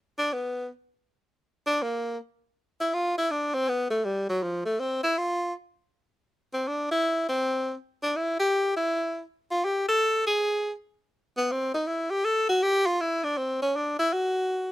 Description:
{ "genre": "jazz", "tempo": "161 BPM", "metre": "4/4", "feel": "swing 66% on 8ths", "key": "unclear", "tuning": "A4 = 440 Hz", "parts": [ { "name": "bright tenor saxophone", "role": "solo", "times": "0.2-14.7 s", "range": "F3 to A4", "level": "-24 LUFS", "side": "equal", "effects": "none" } ], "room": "little or no reverb", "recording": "close, detailed microphones", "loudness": "-25 LUFS", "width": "side -16 dB against mid", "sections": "0.0-14.7 A section", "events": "tenor saxophone solo 0.0-14.7", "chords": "none" }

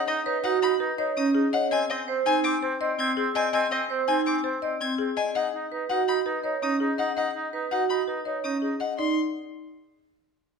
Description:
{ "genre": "classical, minimalist pattern music", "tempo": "165 BPM", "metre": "5/4", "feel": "straight", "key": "unclear", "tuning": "A4 = 440 Hz", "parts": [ { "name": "folk marimba with hard mallets", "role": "melody", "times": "0.0-9.2 s", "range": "G#4 to Ab5", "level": "-30 LUFS", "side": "left 8 dB", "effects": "none" }, { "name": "warm oboe", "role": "second line", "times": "0.0-8.8 s", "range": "C4 to D#4", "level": "-30 LUFS", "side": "right 2 dB", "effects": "none" }, { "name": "rich violin", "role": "arpeggios", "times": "0.0-9.2 s", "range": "Eb5 to Ab6", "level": "-31 LUFS", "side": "left 4 dB", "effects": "none" }, { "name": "vibraphone with medium hard mallets", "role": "arpeggios", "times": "0.3-9.2 s", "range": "C4 to D5", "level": "-27 LUFS", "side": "right 5 dB", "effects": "none" } ], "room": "wet recital hall reverb, RT60 1.3 s", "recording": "minimal, uncompressed stereo recording", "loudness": "-23 LUFS", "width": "side -5 dB against mid", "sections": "0.0-9.0 A section; 9.0-10.6 B section", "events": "none", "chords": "0.0 B; 1.7 Ab; 5.3 B; 9.0 Cm/Eb" }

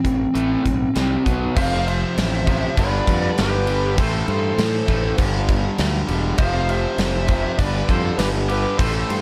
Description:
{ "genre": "hard rock", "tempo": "100 BPM", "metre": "4/4", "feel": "straight", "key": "unclear", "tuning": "A4 = 441 Hz", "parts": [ { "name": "bluesy overdriven lead guitar", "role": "melody", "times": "0.0-9.2 s", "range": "C4 to F5", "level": "-27 LUFS", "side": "equal", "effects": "distortion, tape echo" }, { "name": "crunchy overdriven guitar", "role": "riff", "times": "0.0-1.5 s", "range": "A2 to C4", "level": "-32 LUFS", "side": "equal", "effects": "none" }, { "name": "overdriven semi-hollow guitar", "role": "riff", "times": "0.0-9.2 s", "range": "F2 to C4", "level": "-28 LUFS", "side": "equal", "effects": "none" }, { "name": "gated 80s drum kit", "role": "drums", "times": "0.0-9.2 s", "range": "crash cymbal, hi-hat, kick drum, snare drum", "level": "-25 LUFS", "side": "equal", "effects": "none" }, { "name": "fuzz fingered electric bass", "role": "bass", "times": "0.1-9.2 s", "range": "E1 to A2", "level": "-25 LUFS", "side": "equal", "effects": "overdrive" }, { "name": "biting lead guitar", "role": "second line", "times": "1.6-9.2 s", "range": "G4 to C5", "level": "-30 LUFS", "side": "equal", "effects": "overdrive, plate reverb" } ], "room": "light reverb", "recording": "none", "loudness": "-20 LUFS", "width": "mono", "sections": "0.0-1.6 A section; 1.6-9.2 B section", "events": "none", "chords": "0.0 Am; 1.0 C5; 1.3 B5; 1.6 F; 2.8 G; 4.0 Am; 5.2 G5; 6.4 F5; 7.6 G5" }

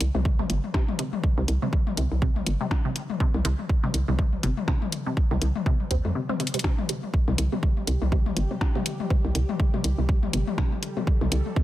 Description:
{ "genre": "minimal techno", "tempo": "122 BPM", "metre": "4/4", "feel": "swing 58% on 16ths", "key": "unclear", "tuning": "A4 = 439 Hz", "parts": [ { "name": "hollow knocking FM bass", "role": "bass", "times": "0.0-11.4 s", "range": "G1 to F2", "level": "-25 LUFS", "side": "equal", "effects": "sidechain pumping" }, { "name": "electronic hi-hat", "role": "drums", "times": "0.0-11.4 s", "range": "none", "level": "-30 LUFS", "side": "left 1 dB", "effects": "none" }, { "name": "resonant blip pluck", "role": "riff", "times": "0.1-11.6 s", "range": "C3 to C4", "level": "-33 LUFS", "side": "right 2 dB", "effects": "phaser, sidechain pumping, dub echo" }, { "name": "electronic toms and percussion blips", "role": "percussion", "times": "0.1-11.5 s", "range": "none", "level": "-30 LUFS", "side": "left 5 dB", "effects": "tape echo" }, { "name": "electronic kick drum", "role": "drums", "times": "0.3-11.6 s", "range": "none", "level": "-24 LUFS", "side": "equal", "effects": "none" }, { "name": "swarming drone", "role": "texture", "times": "7.5-11.6 s", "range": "G3 to A4", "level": "-38 LUFS", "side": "right 2 dB", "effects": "built-in reverb, sidechain pumping" } ], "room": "little or no reverb", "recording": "none", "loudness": "-23 LUFS", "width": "side -14 dB against mid", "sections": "0.0-11.6 A section", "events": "break 6.2-6.6; drum fill 6.4", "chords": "0.0 C5" }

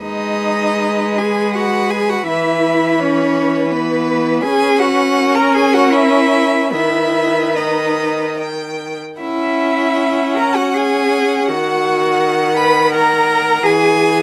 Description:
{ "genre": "classical, slow romantic movement for string quartet", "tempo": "72-84 BPM", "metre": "3/4", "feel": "rubato", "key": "G# minor, B major from 9.2 s", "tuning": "A4 = 440 Hz", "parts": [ { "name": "rich violin", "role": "melody", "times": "0.0-14.2 s", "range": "A#4 to G5", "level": "-27 LUFS", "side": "equal", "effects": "none" }, { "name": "clear violin", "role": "second line", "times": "0.0-14.2 s", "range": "B4 to B5", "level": "-22 LUFS", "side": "equal", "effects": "none" }, { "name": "rich viola", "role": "accompaniment", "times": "0.0-14.2 s", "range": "D#3 to C#4", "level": "-20 LUFS", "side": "equal", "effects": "none" }, { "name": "rich cello", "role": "bass", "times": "0.0-14.2 s", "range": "B3 to B4", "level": "-19 LUFS", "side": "equal", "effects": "none" } ], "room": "light reverb", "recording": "none", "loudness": "-15 LUFS", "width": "mono", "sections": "0.0-14.2 A section", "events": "none", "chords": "0.0 G#m; 2.3 E5; 4.4 A#dim/C#; 6.7 Badd11/D#; 8.4 D#; 9.2 F#7(no3)/C#; 11.5 B/D#; 13.7 E" }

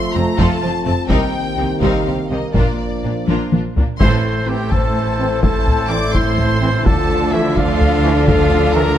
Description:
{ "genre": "cinematic, epic orchestral film score", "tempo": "84 BPM (dotted quarters)", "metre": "6/8", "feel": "straight", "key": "A minor from 4.0 s", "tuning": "A4 = 440 Hz", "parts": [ { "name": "warm symphonic violin section", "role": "melody", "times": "0.0-9.0 s", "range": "D5 to D6", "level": "-24 LUFS", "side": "left 4 dB", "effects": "none" }, { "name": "bright trombone section", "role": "sustained chords", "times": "0.0-8.8 s", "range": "Eb3 to C4", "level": "-25 LUFS", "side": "right 4 dB", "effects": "none" }, { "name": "mellow French horn section", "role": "sustained chords", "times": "0.0-9.0 s", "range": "C4 to C5", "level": "-23 LUFS", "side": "left 5 dB", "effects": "none" }, { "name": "clear symphonic violin section", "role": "second line", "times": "0.1-9.0 s", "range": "A3 to Bb4", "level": "-27 LUFS", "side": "left 3 dB", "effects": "none" }, { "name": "clear symphonic viola section", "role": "accompaniment", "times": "0.1-9.0 s", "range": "E3 to D4", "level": "-25 LUFS", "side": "right 2 dB", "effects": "none" }, { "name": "rich symphonic double bass section", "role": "bass", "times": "0.2-9.0 s", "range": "F1 to D2", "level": "-22 LUFS", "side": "right 2 dB", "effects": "none" }, { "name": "warm symphonic cello section", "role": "bass", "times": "0.2-9.0 s", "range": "F2 to D3", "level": "-22 LUFS", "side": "right 1 dB", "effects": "none" }, { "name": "taiko ensemble", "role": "drums", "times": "0.4-8.7 s", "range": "none", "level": "-19 LUFS", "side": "equal", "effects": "none" }, { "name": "clear woodwind section", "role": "sustained chords", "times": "4.0-9.0 s", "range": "D4 to D5", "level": "-27 LUFS", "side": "left 1 dB", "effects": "none" }, { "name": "clear trumpet", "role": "stabs", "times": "4.0-9.0 s", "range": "E4 to D5", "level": "-23 LUFS", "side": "right 2 dB", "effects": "none" } ], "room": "light reverb", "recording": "close, detailed microphones", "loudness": "-14 LUFS", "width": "side -10 dB against mid", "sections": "0.0-4.0 A section; 4.0-9.0 B section", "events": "drum fill 3.3-4.0; band accent 4.0-4.5", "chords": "0.0 F; 1.1 Cm7; 2.5 Bb; 4.0 Am; 6.9 Dmadd9" }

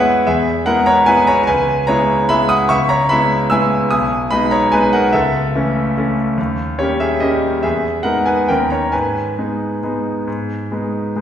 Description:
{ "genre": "classical, piano waltz", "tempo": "130-156 BPM", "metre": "3/4", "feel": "rubato", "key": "G# minor", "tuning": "A4 = 440 Hz", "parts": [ { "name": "bright concert grand piano", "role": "solo", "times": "0.0-11.2 s", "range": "B1 to E6", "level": "-14 LUFS", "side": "equal", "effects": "none" } ], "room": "wet recital hall reverb, RT60 1.4 s", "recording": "recorded in a church or concert hall", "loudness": "-14 LUFS", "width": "side -9 dB against mid", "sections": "0.0-11.2 A section", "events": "none", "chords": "0.0 E; 1.5 C#m7; 3.9 G#m/B; 5.1 A/C#; 6.4 D#7; 7.6 Emaj7; 8.5 D#7; 8.9 G#m" }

